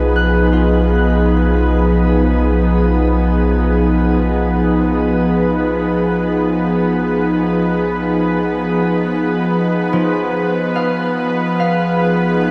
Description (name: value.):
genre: ambient.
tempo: 54 BPM.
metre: 4/4.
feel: straight.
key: B lydian.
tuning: A4 = 440 Hz.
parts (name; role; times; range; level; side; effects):
airy breathy pad; sustained chords; 0.0-12.5 s; E#3 to G#4; -18 LUFS; equal; chorus.
concert harp; arpeggios; 0.0-12.5 s; E#3 to F#6; -27 LUFS; equal; tape echo.
deep rumbling drone; bass; 0.0-12.5 s; B1; -22 LUFS; equal; built-in reverb, tube saturation.
bowed-like drone; drone; 0.0-12.5 s; B3 to B4; -22 LUFS; equal; built-in reverb.
room: wet shimmer reverb, RT60 7.2 s.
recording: none.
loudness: -16 LUFS.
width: mono.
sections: 0.0-12.5 A section.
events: fade-in on harp 0.0-12.5.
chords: 0.0 B; 10.5 C#9/B (rootless).